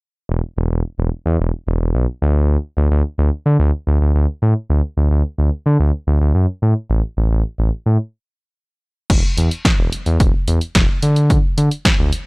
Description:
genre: synth-pop.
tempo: 109 BPM.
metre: 4/4.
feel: straight.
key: unclear.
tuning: A4 = 440 Hz.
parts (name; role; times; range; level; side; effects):
smooth synth bass; bass; 0.3-12.1 s; E1 to D3; -14 LUFS; equal; none.
punchy analog drum machine; drums; 9.1-12.3 s; crash cymbal, hi-hat, kick drum, snare drum; -15 LUFS; equal; none.
room: little or no reverb.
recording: dry, gritty hardware recording.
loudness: -15 LUFS.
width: side -34 dB against mid.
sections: 0.3-9.1 A section; 9.1-12.3 B section.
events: stop 8.0-9.1.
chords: none.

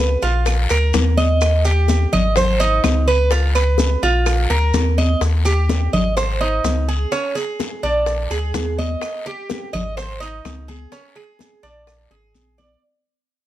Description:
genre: latin, Cuban son and guajira.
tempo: 126 BPM.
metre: 4/4.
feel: straight.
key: Eb major.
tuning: A4 = 445 Hz.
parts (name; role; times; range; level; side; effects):
Cuban tres; arpeggios; 0.0-12.8 s; Db4 to Eb5; -21 LUFS; right 3 dB; none.
pure sine sub bass; bass; 0.0-12.8 s; Ab1 to Eb2; -18 LUFS; equal; none.
bongos; percussion; 0.2-12.7 s; none; -28 LUFS; left 10 dB; none.
congas; percussion; 0.2-12.8 s; none; -25 LUFS; left 2 dB; none.
guiro; percussion; 0.2-12.8 s; none; -32 LUFS; left 6 dB; none.
maracas; percussion; 0.2-12.8 s; none; -33 LUFS; right 2 dB; none.
claves; percussion; 0.5-4.5, 9.0-12.1 s; none; -30 LUFS; right 6 dB; none.
room: little or no reverb.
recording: close, detailed microphones.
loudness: -16 LUFS.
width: side -13 dB against mid.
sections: 0.0-5.2 A section; 5.2-12.8 B section.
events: fade-out 5.2-12.8; drum fill 12.1-12.8.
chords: 0.5 Bb; 1.4 Eb; 2.4 Ab; 3.3 Db7; 4.3 Bb; 5.2 Eb; 6.2 Ab; 7.1 Db5; 8.1 Bb7; 9.0 Eb; 10.0 Ab; 10.9 Db5; 11.9 Bb7.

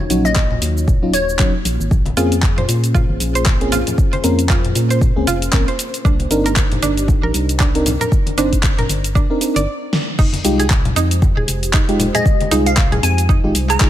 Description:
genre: deep house.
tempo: 116 BPM.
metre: 4/4.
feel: swing 58% on 16ths.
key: F minor.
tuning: A4 = 438 Hz.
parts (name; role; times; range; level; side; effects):
glassy wavetable pluck; melody; 0.0-1.5, 12.1-13.9 s; Db5 to Bb5; -21 LUFS; left 1 dB; chorus, digital delay.
dark analog pad; sustained chords; 0.0-13.9 s; Ab3 to D5; -27 LUFS; equal; chorus, sidechain pumping.
mellow FM electric piano; stabs; 0.1-13.9 s; Gb3 to C5; -20 LUFS; equal; chorus, sidechain pumping, ping-pong delay.
organ-like FM bass; bass; 0.1-13.9 s; Eb1 to Bb2; -20 LUFS; equal; sidechain pumping.
deep house drum kit; drums; 0.1-13.9 s; cabasa, crash cymbal, handclaps, hi-hat, snare drum; -22 LUFS; equal; none.
electronic kick drum; drums; 0.4-13.9 s; none; -15 LUFS; equal; none.
congas; percussion; 0.5-13.0 s; none; -26 LUFS; left 3 dB; none.
mallet-like synth pluck; arpeggios; 2.2-13.7 s; D4 to D5; -24 LUFS; right 5 dB; chorus, cassette tape, sidechain pumping, digital delay.
room: little or no reverb.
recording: none.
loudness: -14 LUFS.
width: side -12 dB against mid.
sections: 0.0-10.2 A section; 10.2-13.9 B section.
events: stop 9.7-10.2; drum fill 9.9; band accent 9.9; drop 10.2-13.9.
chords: 0.0 Ebm9; 1.9 Bbm9; 5.8 Cm9; 10.2 Fm9.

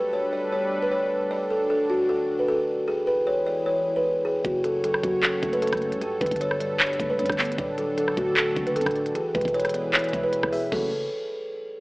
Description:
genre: hip hop, trap.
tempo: 153 BPM.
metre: 4/4.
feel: half-time.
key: F# minor.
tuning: A4 = 440 Hz.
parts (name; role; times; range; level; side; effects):
buzzing kalimba; melody; 0.0-10.9 s; F#4 to D5; -24 LUFS; equal; none.
dark analog pad; sustained chords; 0.0-10.9 s; D3 to C#5; -32 LUFS; equal; chorus.
mellow tine electric piano; accompaniment; 4.4-10.9 s; F#2 to E5; -34 LUFS; equal; phaser.
growling 808-style bass; bass; 4.4-11.1 s; D1 to G2; -36 LUFS; equal; none.
trap drum kit; drums; 4.4-10.8 s; crash cymbal, handclaps, hi-hat, kick drum, rim click; -26 LUFS; equal; none.
room: light reverb, digital ambience.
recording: AM radio sound.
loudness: -22 LUFS.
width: side -23 dB against mid.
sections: 0.0-10.7 A section; 10.7-11.8 B section.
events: none.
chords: 0.0 Gadd9; 1.3 D; 2.9 E; 4.4 F#m; 6.0 Gadd9; 7.6 D; 9.2 E; 10.7 F#m.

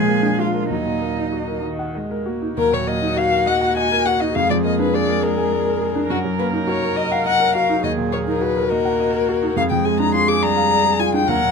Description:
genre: quick classical-period movement for piano quartet.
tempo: 69 BPM (dotted quarters).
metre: 6/8.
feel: rubato.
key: Eb minor.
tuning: A4 = 441 Hz.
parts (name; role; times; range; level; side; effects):
dark violin; melody; 0.0-11.5 s; Gb4 to D6; -20 LUFS; left 6 dB; none.
dark cello; second line; 0.0-11.5 s; Gb3 to Ab4; -27 LUFS; right 5 dB; none.
clear concert grand piano; accompaniment; 0.0-11.5 s; Eb2 to Ab5; -21 LUFS; equal; none.
warm viola; accompaniment; 0.0-11.5 s; Eb3 to Bb4; -25 LUFS; right 2 dB; none.
room: light reverb.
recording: close, detailed microphones.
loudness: -17 LUFS.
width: side -5 dB against mid.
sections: 0.0-2.6 A section; 2.6-11.5 B section.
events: none.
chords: 0.0 Bb7; 0.7 Ebm; 4.4 Bb7/F; 6.1 Ebm/Gb; 7.8 Ebm; 9.6 Ddim/F.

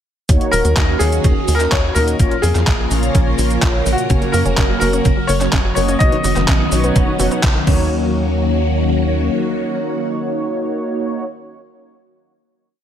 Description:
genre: italo disco.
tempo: 126 BPM.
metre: 4/4.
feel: straight.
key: Eb minor.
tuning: A4 = 440 Hz.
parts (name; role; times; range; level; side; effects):
phased string machine; sustained chords; 0.3-11.2 s; Db3 to Bb4; -21 LUFS; left 1 dB; ensemble chorus, phaser.
mellow synth brass; stabs; 0.3-11.2 s; Bb2 to Eb5; -22 LUFS; equal; chorus.
tight sequencer bass; bass; 0.3-9.3 s; Eb1 to Gb2; -18 LUFS; equal; none.
detuned 8-bit digital drum machine; drums; 0.3-7.8 s; cabasa, crash cymbal, handclaps, hi-hat; -22 LUFS; equal; overdrive, gated reverb.
electronic kick drum; drums; 0.3-7.8 s; none; -16 LUFS; equal; overdrive.
bright baby grand piano; melody; 0.5-7.4 s; Gb4 to D#5; -21 LUFS; left 3 dB; tape echo.
analog pluck; arpeggios; 4.1-8.1 s; Db3 to Db4; -24 LUFS; right 3 dB; chorus, tape echo.
room: light reverb.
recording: none.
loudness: -14 LUFS.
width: side -9 dB against mid.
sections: 0.3-7.9 chorus; 7.9-11.7 final hit.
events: band accent 7.4.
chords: 0.3 Ebm7; 2.2 Bbm; 4.1 Gb; 6.0 Badd9; 7.7 Ebm7.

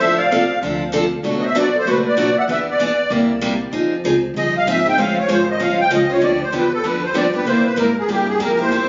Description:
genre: acoustic string swing (jazz manouche).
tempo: 193 BPM.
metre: 4/4.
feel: swing 60% on 8ths.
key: F minor from 3.7 s.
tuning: A4 = 440 Hz.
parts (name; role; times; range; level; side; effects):
musette accordion; melody; 0.0-8.9 s; G4 to G5; -21 LUFS; equal; plate reverb, tape echo.
breathy clarinet; second line; 0.0-3.1 s; F#4 to E5; -26 LUFS; equal; none.
picked steel-string acoustic guitar; accompaniment; 0.0-8.9 s; B2 to C5; -21 LUFS; equal; none.
upright bass; bass; 0.0-8.9 s; F1 to C3; -29 LUFS; equal; none.
room: wet studio reverb, RT60 0.5 s.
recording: recorded on a phone in the room, club reverb, compression, nothing above 7.5 kHz.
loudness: -18 LUFS.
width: mono.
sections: 0.0-3.7 A section; 3.7-8.9 B section.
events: accordion solo 3.7-8.9.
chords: 0.0 Dm7/A; 1.2 Bm7; 2.5 E7; 3.1 C7; 3.7 Fm7; 5.0 Dbmaj7/F; 6.2 G7; 7.5 C7.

